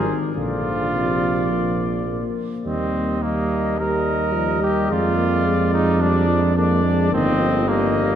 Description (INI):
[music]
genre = classical, brass quintet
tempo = 107 BPM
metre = 4/4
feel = straight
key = Eb major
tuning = A4 = 440 Hz
[part]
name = bright trumpet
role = melody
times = 0.0-8.2 s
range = C5 to Eb5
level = -27 LUFS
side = left 7 dB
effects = none
[part]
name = clear trumpet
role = second line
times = 0.0-8.2 s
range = Bb3 to Bb4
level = -24 LUFS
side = right 3 dB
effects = none
[part]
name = dark French horn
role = accompaniment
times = 0.0-8.2 s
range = Bb2 to Bb3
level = -26 LUFS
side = left 3 dB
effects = none
[part]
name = mellow trombone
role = accompaniment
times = 0.0-8.2 s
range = F3 to Bb3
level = -27 LUFS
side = right 3 dB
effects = none
[part]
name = mellow tuba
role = bass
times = 0.0-8.2 s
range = G1 to F2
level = -22 LUFS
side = right 1 dB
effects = none
[sound]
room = wet cathedral reverb, RT60 4.1 s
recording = none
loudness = -18 LUFS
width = side -9 dB against mid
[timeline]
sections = 0.0-8.2 A section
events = none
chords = 0.4 Bb; 2.7 Eb; 4.9 Ddim/F; 7.1 Eb/G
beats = | 0.38 0.94 1.51 2.09 | 2.66 3.23 3.80 4.36 | 4.92 5.47 6.02 6.57 | 7.13 7.68